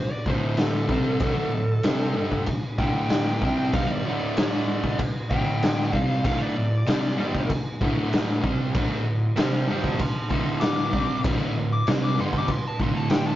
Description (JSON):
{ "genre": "garage rock duo or trio", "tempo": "96 BPM", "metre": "4/4", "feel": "straight", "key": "unclear", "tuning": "A4 = 440 Hz", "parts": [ { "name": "fuzz lead guitar", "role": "melody", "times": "0.0-13.4 s", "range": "A4 to D6", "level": "-30 LUFS", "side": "equal", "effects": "distortion" }, { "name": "fuzz guitar", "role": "riff", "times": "0.3-13.4 s", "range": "D2 to C4", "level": "-25 LUFS", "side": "equal", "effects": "distortion" }, { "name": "raw garage drum kit", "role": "drums", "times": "0.3-13.2 s", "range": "crash cymbal, kick drum, snare drum", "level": "-25 LUFS", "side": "equal", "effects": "none" } ], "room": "moderate studio ambience, RT60 0.5 s", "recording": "rough rehearsal-room recording, tube saturation, nothing above 7.4 kHz", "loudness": "-22 LUFS", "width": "side -14 dB against mid", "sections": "0.0-13.4 A section", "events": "lead electric guitar solo 0.0-13.4", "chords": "0.0 D5" }